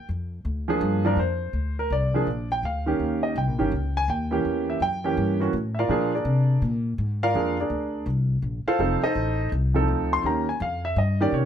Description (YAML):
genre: jazz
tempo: 166 BPM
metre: 4/4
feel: swing 65% on 8ths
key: Bb mixolydian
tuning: A4 = 440 Hz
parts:
  - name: warm concert grand piano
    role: melody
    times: 0.0-11.5 s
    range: Eb3 to C6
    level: -24 LUFS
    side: right 2 dB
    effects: none
  - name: upright bass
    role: bass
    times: 0.1-11.5 s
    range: F1 to C3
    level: -25 LUFS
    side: left 1 dB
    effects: none
room: light reverb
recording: none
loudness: -22 LUFS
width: side -9 dB against mid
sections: 0.0-11.5 A section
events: none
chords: 0.0 Bb; 3.0 Eb7; 4.4 Edim7; 5.9 Bb7; 8.8 F7; 10.2 Eb7